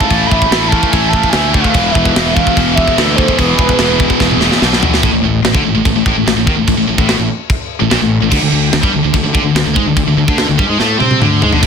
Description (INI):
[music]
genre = heavy metal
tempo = 146 BPM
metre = 4/4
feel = straight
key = unclear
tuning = A4 = 440 Hz
[part]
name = mellow horn-like synth lead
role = melody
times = 0.0-4.6 s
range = B4 to B5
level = -18 LUFS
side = right 3 dB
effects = chorus, ping-pong delay
[part]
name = smooth overdriven lead guitar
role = second line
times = 0.0-4.6 s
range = G#4 to F5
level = -24 LUFS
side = right 4 dB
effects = ping-pong delay
[part]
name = heavy high-gain guitar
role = riff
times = 0.0-11.7 s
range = E2 to C4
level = -17 LUFS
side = right 12 dB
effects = distortion
[part]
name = high-gain distorted guitar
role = riff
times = 0.0-11.7 s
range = E2 to C4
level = -17 LUFS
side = left 12 dB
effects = distortion
[part]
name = sludgy distorted guitar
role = riff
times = 0.0-11.7 s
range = E2 to C4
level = -19 LUFS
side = equal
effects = overdrive
[part]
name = tight metal drum kit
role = drums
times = 0.0-11.7 s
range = china cymbal, crash cymbal, kick drum, snare drum, toms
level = -15 LUFS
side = equal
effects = none
[part]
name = fuzz fingered electric bass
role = bass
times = 0.1-11.7 s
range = E1 to C3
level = -18 LUFS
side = equal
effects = overdrive
[sound]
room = studio reverb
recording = dense, heavily limited modern master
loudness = -10 LUFS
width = side -6 dB against mid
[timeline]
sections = 0.0-5.0 A section; 5.0-11.6 B section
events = drum fill 4.2-5.0, 10.8-11.6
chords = 0.0 A5; 1.7 E; 5.0 N.C.; 8.3 D5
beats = | 0.10 0.52 0.92 1.33 | 1.74 2.15 2.56 2.97 | 3.38 3.79 4.20 4.62 | 5.03 5.44 5.85 6.26 | 6.67 7.08 7.50 7.91 | 8.32 8.73 9.15 9.56 | 9.97 10.39 10.80 11.21 | 11.62